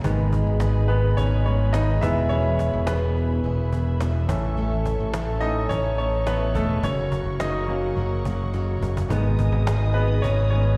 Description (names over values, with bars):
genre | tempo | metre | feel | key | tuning
piano-driven pop | 106 BPM | 4/4 | straight | G# minor | A4 = 440 Hz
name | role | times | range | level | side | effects
bright grand piano | accompaniment | 0.0-10.8 s | D#3 to E5 | -30 LUFS | equal | slapback echo
dark studio string section | sustained chords | 0.0-10.8 s | G#4 to D#6 | -38 LUFS | equal | none
picked steel-string acoustic guitar | riff | 0.0-10.8 s | E2 to A4 | -32 LUFS | equal | slapback echo
modern bright fingered electric bass | bass | 0.0-10.8 s | E1 to A1 | -25 LUFS | equal | none
cajon | drums | 0.0-10.7 s | none | -33 LUFS | equal | none
room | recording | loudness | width
light reverb, small room ambience | live gig heard through the venue's PA, recital hall reverb | -23 LUFS | mono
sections
0.0-10.8 A section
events
grand piano solo 0.0-10.8; drum fill 8.5-9.1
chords
0.0 G#m; 2.0 E; 4.3 A; 6.8 F#; 9.1 G#m